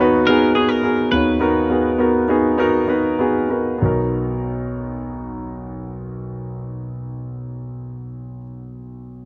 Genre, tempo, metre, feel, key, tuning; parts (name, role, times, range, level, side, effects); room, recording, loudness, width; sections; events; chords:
piano-driven pop; 93-109 BPM; 4/4; straight; B major; A4 = 440 Hz
twelve-string electric guitar; melody; 0.0-3.1 s; F#4 to B4; -26 LUFS; equal; lush chorus
warm grand piano; accompaniment; 0.0-9.3 s; B1 to C#5; -21 LUFS; equal
small room ambience; rough home demo mix; -18 LUFS; mono
0.0-3.8 A section; 3.8-9.0 B section
slowing down 0.0-3.8
0.0 Bmaj7/D#; 3.8 Bmaj7